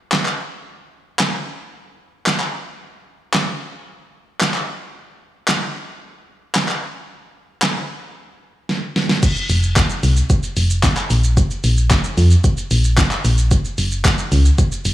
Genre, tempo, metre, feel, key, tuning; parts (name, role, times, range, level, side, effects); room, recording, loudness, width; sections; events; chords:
dance-pop; 112 BPM; 4/4; straight; Bb minor; A4 = 440 Hz
deep house drum kit; drums; 0.1-14.9 s; crash cymbal, handclaps, hi-hat, kick drum, shaker, snare drum; -18 LUFS; equal
solid FM bass; bass; 9.5-14.9 s; F1 to F2; -14 LUFS; equal; sidechain pumping
little or no reverb; dry, gritty hardware recording, small room ambience; -15 LUFS; side -14 dB against mid
0.0-9.2 A section; 9.2-14.9 B section
break 0.7-1.7; drum fill 8.7-9.2; drop 9.2-14.9